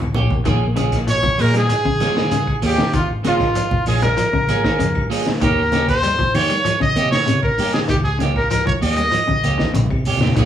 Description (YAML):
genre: afrobeat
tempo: 97 BPM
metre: 4/4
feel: straight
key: Bb dorian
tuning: A4 = 441 Hz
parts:
  - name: fingered electric bass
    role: bass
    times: 0.0-10.5 s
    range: G1 to Eb3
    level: -22 LUFS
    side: equal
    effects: none
  - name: cloth-damped thuddy drum kit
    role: drums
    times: 0.0-10.5 s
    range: hi-hat, kick drum, snare drum, toms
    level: -23 LUFS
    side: equal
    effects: none
  - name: claves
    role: percussion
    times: 0.0-10.5 s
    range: none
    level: -39 LUFS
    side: left 6 dB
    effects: none
  - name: congas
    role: percussion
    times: 0.0-10.5 s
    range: none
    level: -25 LUFS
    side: equal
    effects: none
  - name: clean electric guitar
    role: stabs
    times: 0.1-10.5 s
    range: F3 to Ab4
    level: -24 LUFS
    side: right 5 dB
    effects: spring reverb
  - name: shekere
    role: percussion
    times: 0.2-10.5 s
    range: none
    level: -28 LUFS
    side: left 1 dB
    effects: none
  - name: clean electric guitar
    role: arpeggios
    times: 0.5-10.5 s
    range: Db3 to G3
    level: -25 LUFS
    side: left 4 dB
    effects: none
  - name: bright trumpet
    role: melody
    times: 1.1-9.7 s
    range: F4 to Eb5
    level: -20 LUFS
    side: equal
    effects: none
  - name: bright alto saxophone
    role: second line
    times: 1.1-9.7 s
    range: F4 to Eb5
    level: -26 LUFS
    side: right 3 dB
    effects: none
room: moderate large studio reverb, RT60 0.9 s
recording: band playing live in one room, small room ambience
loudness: -15 LUFS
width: side -10 dB against mid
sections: 0.5-10.5 A section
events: drum fill 0.0-0.5, 9.4-10.4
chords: 0.5 Bbm7; 5.4 Eb7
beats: | 0.46 1.08 1.70 2.31 | 2.93 3.55 4.17 4.79 | 5.41 6.03 6.65 7.27 | 7.89 8.51 9.13 9.74 | 10.37